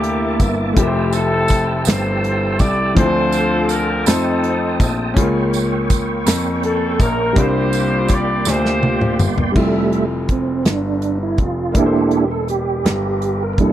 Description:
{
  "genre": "slow gospel",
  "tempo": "55 BPM (dotted quarters)",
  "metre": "6/8",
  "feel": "straight",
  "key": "F major",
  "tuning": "A4 = 440 Hz",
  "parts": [
    { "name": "mellow horn section", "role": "melody", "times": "0.0-9.5 s", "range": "Bb3 to D5", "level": "-20 LUFS", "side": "left 1 dB", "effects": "none" },
    { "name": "warm concert grand piano", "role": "accompaniment", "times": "0.0-13.7 s", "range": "C3 to C5", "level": "-22 LUFS", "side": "left 2 dB", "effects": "none" },
    { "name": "tonewheel organ", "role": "sustained chords", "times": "0.0-13.7 s", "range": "G3 to E6", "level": "-22 LUFS", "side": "right 4 dB", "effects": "slow rotary speaker, chorus vibrato" },
    { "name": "warm baby grand piano", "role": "bass", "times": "0.0-13.7 s", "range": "E1 to F2", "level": "-21 LUFS", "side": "left 1 dB", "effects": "none" },
    { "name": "natural country drum kit", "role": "drums", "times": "0.0-13.7 s", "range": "crash cymbal, hi-hat, kick drum, snare drum, toms", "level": "-17 LUFS", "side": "equal", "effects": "none" },
    { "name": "tambourine", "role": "percussion", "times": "0.4-9.5 s", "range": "none", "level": "-28 LUFS", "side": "right 16 dB", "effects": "none" }
  ],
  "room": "small room ambience",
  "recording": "dry, close 1970s-style studio recording",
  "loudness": "-15 LUFS",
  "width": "side -12 dB against mid",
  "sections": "0.0-9.6 A section; 9.6-13.7 B section",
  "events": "drum fill 8.5-9.6; tonewheel organ solo 9.6-13.7",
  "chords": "0.0 C13; 0.8 Fmaj9; 3.0 Dm7; 4.1 F7; 5.2 Bbm/Db; 7.4 C9sus4; 9.6 Fmaj9; 11.8 C13/E"
}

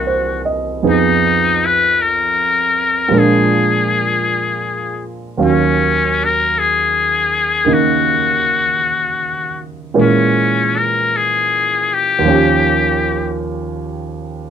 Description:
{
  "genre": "jazz",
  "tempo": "53 BPM",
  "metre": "4/4",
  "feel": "swing 68% on 8ths",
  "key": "Eb minor",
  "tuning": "A4 = 440 Hz",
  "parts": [
    { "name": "trumpet with metal mute", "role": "melody", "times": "0.0-13.4 s", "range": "Db4 to Cb5", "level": "-15 LUFS", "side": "left 4 dB", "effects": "none" },
    { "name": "warm grand piano", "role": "accompaniment", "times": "0.0-14.5 s", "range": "C2 to F5", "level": "-16 LUFS", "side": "right 3 dB", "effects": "none" }
  ],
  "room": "moderate club reverb, RT60 0.5 s",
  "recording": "dark, warm production",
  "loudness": "-13 LUFS",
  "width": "side -8 dB against mid",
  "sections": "0.0-14.5 A section",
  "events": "none",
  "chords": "0.0 C7alt; 0.8 Fm7b5; 3.1 Bb7; 5.4 Ebm9; 9.9 Bbm7b5; 12.2 Eb7"
}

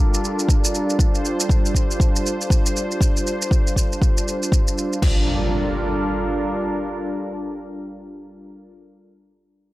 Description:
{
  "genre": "afro house",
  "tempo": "119 BPM",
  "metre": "4/4",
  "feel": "swing 59% on 16ths",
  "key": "G minor",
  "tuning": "A4 = 439 Hz",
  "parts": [
    { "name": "warm analog pad", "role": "sustained chords", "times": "0.0-8.7 s", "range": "G3 to C5", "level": "-24 LUFS", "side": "equal", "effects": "lush chorus, sidechain pumping" },
    { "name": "electronic shaker and crash cymbal", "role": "drums", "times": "0.1-5.1 s", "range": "none", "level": "-26 LUFS", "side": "right 1 dB", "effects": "none" },
    { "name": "electronic kick drum", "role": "drums", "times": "0.5-5.1 s", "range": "none", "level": "-18 LUFS", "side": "equal", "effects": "none" },
    { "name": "impact", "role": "sound effects", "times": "5.0-8.7 s", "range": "none", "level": "-26 LUFS", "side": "equal", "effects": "none" }
  ],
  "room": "light reverb",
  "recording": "echo-heavy mix",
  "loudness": "-18 LUFS",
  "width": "side -17 dB against mid",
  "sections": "0.0-5.0 A section; 5.0-9.1 B section",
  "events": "none",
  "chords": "0.0 Gm9"
}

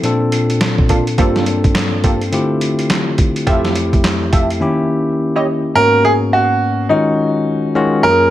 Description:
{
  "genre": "R&B, new jack swing",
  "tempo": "105 BPM",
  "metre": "4/4",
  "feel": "swing 61% on 16ths",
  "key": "unclear",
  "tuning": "A4 = 441 Hz",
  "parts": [
    { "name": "bell-like tine electric piano", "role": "accompaniment", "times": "0.0-8.3 s", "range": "F2 to A4", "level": "-16 LUFS", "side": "left 2 dB", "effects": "none" },
    { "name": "dusty soul sampler-style drum kit", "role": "drums", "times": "0.0-4.6 s", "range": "handclaps, hi-hat, kick drum, snare drum", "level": "-16 LUFS", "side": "equal", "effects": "overdrive, gated reverb" },
    { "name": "funky polysynth comp", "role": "stabs", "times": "0.9-5.5 s", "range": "Bb3 to E5", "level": "-21 LUFS", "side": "right 2 dB", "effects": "chorus" },
    { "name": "bright concert grand piano", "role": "melody", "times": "5.8-8.3 s", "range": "D#4 to A#4", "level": "-13 LUFS", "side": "right 1 dB", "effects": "none" }
  ],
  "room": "light reverb",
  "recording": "none",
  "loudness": "-12 LUFS",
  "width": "side -13 dB against mid",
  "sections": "0.0-5.8 A section; 5.8-8.3 B section",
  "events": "none",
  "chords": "0.0 Bbmaj7; 1.2 Gm11; 2.3 Dm11; 3.5 Fmaj9; 4.6 Eb7b9; 5.8 G#m11; 6.9 D#m11"
}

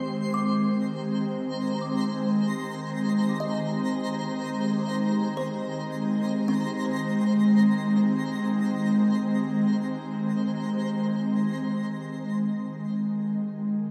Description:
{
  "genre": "ambient",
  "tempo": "free time",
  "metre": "none",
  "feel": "none",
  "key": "Ab lydian",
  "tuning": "A4 = 440 Hz",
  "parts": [
    { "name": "ethereal airy pad", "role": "sustained chords", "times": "0.0-13.9 s", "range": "Eb3 to C5", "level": "-27 LUFS", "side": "equal", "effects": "ensemble chorus, built-in reverb" },
    { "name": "kalimba", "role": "arpeggios", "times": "0.0-10.9 s", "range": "C4 to D6", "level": "-39 LUFS", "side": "equal", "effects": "analog delay" },
    { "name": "twinkling granular texture", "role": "texture", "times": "0.0-12.0 s", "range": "C5 to C6", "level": "-39 LUFS", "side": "equal", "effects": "built-in reverb" },
    { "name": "organ-like drone", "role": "drone", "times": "2.1-12.0 s", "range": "Ab3 to Eb4", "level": "-38 LUFS", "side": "equal", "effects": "ensemble chorus, built-in reverb, phaser" }
  ],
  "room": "wet plate reverb, RT60 3.0 s",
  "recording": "echo-heavy mix, small room reverb",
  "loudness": "-26 LUFS",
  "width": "mono",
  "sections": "0.0-11.9 A section; 11.9-13.9 B section",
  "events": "none",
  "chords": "0.0 Abmaj7"
}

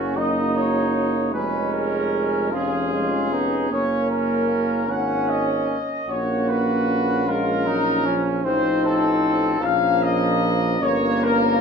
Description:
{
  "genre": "classical, hymn-like piece for brass band",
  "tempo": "51 BPM (dotted quarters)",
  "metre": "6/8",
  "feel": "rubato",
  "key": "F# major",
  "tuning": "A4 = 440 Hz",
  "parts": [
    { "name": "dark trumpet section", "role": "melody", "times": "0.0-11.6 s", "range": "F#4 to F#5", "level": "-24 LUFS", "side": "left 4 dB", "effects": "none" },
    { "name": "clear flugelhorn", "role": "second line", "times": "0.0-11.6 s", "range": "A#3 to F#4", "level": "-26 LUFS", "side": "right 6 dB", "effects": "none" },
    { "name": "clear euphonium", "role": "accompaniment", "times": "0.0-11.6 s", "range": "F#3 to Eb4", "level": "-27 LUFS", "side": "left 2 dB", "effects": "none" },
    { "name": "mellow trombone", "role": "accompaniment", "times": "0.0-11.6 s", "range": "E#3 to C#4", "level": "-26 LUFS", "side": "right 3 dB", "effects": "none" },
    { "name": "warm tuba", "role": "bass", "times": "0.0-11.6 s", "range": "E#1 to A#1", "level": "-27 LUFS", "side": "equal", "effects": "none" }
  ],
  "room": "wet recital hall reverb, RT60 1.5 s",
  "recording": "minimal, uncompressed stereo recording",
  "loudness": "-19 LUFS",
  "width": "side -6 dB against mid",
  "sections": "0.0-11.6 A section",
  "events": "none",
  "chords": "0.0 F#; 1.3 C#/E#; 3.7 F#; 6.1 F#/A#; 8.4 F7/A; 9.6 A#m; 10.8 Gdim"
}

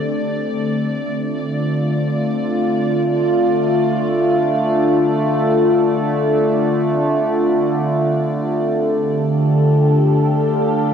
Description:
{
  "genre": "ambient",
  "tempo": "free time",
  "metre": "none",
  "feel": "none",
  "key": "D minor",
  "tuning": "A4 = 440 Hz",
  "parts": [
    { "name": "evolving wavetable pad", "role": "sustained chords", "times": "0.0-10.9 s", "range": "D3 to F5", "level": "-16 LUFS", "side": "equal", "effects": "chorus, built-in reverb, shimmer reverb" },
    { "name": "analog drone", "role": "drone", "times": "2.0-10.9 s", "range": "D3 to A3", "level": "-20 LUFS", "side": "right 1 dB", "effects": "chorus" },
    { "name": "warm studio violin section", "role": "texture", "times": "0.0-10.9 s", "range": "D5", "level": "-30 LUFS", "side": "equal", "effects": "shimmer reverb" }
  ],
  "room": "wet lush hall reverb, RT60 2.9 s",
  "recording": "worn, warbling old tape, cassette tape, warbly pitch drift",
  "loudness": "-15 LUFS",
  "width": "side -7 dB against mid",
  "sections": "0.0-10.9 A section",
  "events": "fade-out on violin section 0.0-10.9; filter sweep on ambient pad 0.0-10.9",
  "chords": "0.0 Dm7"
}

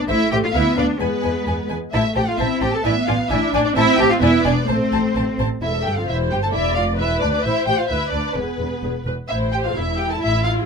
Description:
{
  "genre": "quick classical-period movement for string orchestra",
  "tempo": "131 BPM",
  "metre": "2/4",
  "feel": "straight",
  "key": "A minor",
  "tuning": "A4 = 441 Hz",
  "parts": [
    { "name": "warm symphonic violin section", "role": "melody", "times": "0.0-10.5 s", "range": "B4 to A5", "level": "-24 LUFS", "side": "left 1 dB", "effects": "none" },
    { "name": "warm symphonic viola section", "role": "accompaniment", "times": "0.0-10.7 s", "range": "G#3 to D5", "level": "-23 LUFS", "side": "equal", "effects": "none" },
    { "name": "rich studio cello section", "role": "bass", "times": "0.0-10.6 s", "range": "D2 to A4", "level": "-23 LUFS", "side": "equal", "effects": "none" },
    { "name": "dark symphonic violin section", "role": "second line", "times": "0.1-10.7 s", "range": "B3 to A5", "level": "-25 LUFS", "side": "left 1 dB", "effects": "none" },
    { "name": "warm studio double bass section", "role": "bass", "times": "0.1-10.6 s", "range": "E1 to E2", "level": "-24 LUFS", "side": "right 1 dB", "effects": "none" }
  ],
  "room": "little or no reverb",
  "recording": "close, detailed microphones",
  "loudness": "-17 LUFS",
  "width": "side -5 dB against mid",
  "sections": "0.0-5.6 A section; 5.6-10.7 A section",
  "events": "none",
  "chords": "0.1 A5; 0.5 Bm/D; 1.0 E; 1.9 Am; 2.9 E7/A; 3.8 Am; 4.2 E7; 4.7 Am; 5.6 Am/E; 6.5 E5; 7.4 Am; 7.9 Bmadd11/D; 8.4 E; 9.3 Am"
}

